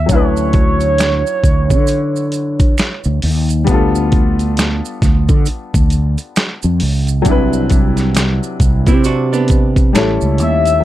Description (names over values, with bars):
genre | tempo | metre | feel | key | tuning
R&B, neo-soul | 67 BPM | 4/4 | swing 60% on 16ths | D major | A4 = 440 Hz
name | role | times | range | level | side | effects
gliding portamento lead | melody | 0.0-3.2, 10.4-10.8 s | C#5 to E5 | -18 LUFS | equal | chorus, slapback echo, plate reverb
warm baby grand piano | accompaniment | 0.0-10.8 s | C3 to B4 | -19 LUFS | left 3 dB | plate reverb
fretless electric bass | bass | 0.0-10.8 s | A1 to D3 | -15 LUFS | equal | lush chorus
boom bap sampler-style drum kit | drums | 0.1-10.8 s | hi-hat, kick drum, snare drum | -14 LUFS | equal | none
maracas and finger snaps | percussion | 0.1-10.8 s | none | -28 LUFS | right 8 dB | none
archtop guitar, miked and amplified | second line | 8.9-9.9 s | B3 to F#4 | -19 LUFS | right 7 dB | plate reverb
room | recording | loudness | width
little or no reverb | dark, warm production | -12 LUFS | side -14 dB against mid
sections
0.0-10.8 A section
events
none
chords
0.0 Dmaj9; 3.7 G9/D; 7.3 Cmaj9#11; 9.9 A7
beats
| 0.09 0.99 1.88 2.78 | 3.67 4.57 5.47 6.36 | 7.26 8.15 9.05 9.94 | 10.84